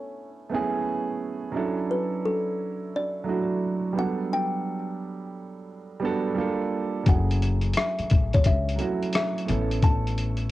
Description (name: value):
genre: lo-fi hip hop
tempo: 87 BPM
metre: 4/4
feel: swing 65% on 16ths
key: unclear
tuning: A4 = 441 Hz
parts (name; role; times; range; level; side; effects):
- kalimba; melody; 0.0-10.5 s; A4 to A5; -30 LUFS; left 1 dB; cassette tape
- dark upright piano; accompaniment; 0.0-10.5 s; F#3 to G#5; -28 LUFS; right 4 dB; none
- upright bass; bass; 7.1-10.5 s; F#1 to C#2; -26 LUFS; left 1 dB; none
- dusty soul sampler-style drum kit; drums; 7.1-10.5 s; hi-hat, kick drum, rim click; -23 LUFS; left 2 dB; overdrive, cassette tape
room: light reverb, small room reverb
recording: home recording on cassette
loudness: -23 LUFS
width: side -16 dB against mid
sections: 0.0-10.5 A section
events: none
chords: 0.0 Amaj9; 1.6 Dmaj9; 4.0 Gmaj9; 6.4 Gm9; 7.1 F#m9; 9.5 Aadd9